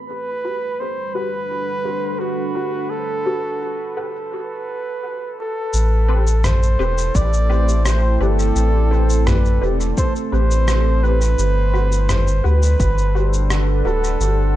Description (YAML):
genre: ambient dub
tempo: 85 BPM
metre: 4/4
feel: straight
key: A dorian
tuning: A4 = 442 Hz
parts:
  - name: deep dark ambient pad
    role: sustained chords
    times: 0.0-14.6 s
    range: G3 to G5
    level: -27 LUFS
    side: right 2 dB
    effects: chorus, built-in reverb
  - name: bubbling stepped-filter texture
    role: texture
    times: 0.0-4.3 s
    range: B5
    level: -38 LUFS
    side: right 7 dB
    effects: none
  - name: trumpet with bucket mute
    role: melody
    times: 0.1-14.6 s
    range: F#4 to D5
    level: -23 LUFS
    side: right 1 dB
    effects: dub echo
  - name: electronic shaker, rim click and congas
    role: drums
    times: 0.1-14.4 s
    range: none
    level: -25 LUFS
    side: left 1 dB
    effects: low-pass filter on perc, low-pass filter on snare, low-pass filter on room, dub echo
  - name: filtered dub chord stab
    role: stabs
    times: 0.4-14.1 s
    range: C4 to B4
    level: -29 LUFS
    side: left 2 dB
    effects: ensemble chorus, dub echo
  - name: soft dub sub bass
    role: bass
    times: 5.7-14.6 s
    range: D1 to D2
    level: -16 LUFS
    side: equal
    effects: none
  - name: electronic kick drum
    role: drums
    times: 7.1-12.9 s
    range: none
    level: -20 LUFS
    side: equal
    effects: overdrive
room: digital ambience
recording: echo-heavy mix, nothing above 10.3 kHz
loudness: -16 LUFS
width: side -14 dB against mid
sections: 0.0-5.7 A section; 5.7-14.6 B section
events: break 4.3-5.7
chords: 0.1 Gmaj7; 5.7 Am9; 11.4 Gmaj7